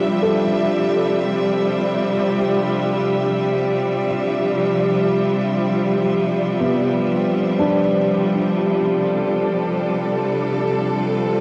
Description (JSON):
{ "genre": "ambient", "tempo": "free time", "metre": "none", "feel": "none", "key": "D dorian", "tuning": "A4 = 440 Hz", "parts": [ { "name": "warm studio string section", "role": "sustained chords", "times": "0.0-11.4 s", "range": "C3 to E5", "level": "-20 LUFS", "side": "equal", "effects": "cassette tape" }, { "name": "felt-muted upright piano", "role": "arpeggios", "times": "0.0-11.4 s", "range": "B3 to B4", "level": "-27 LUFS", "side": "equal", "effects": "cassette tape, tape echo" } ], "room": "wet spring reverb, RT60 1.3 s, studio reverb", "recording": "home recording on cassette", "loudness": "-19 LUFS", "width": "mono", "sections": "0.0-11.4 A section", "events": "none", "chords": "0.0 Dm11", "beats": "free time" }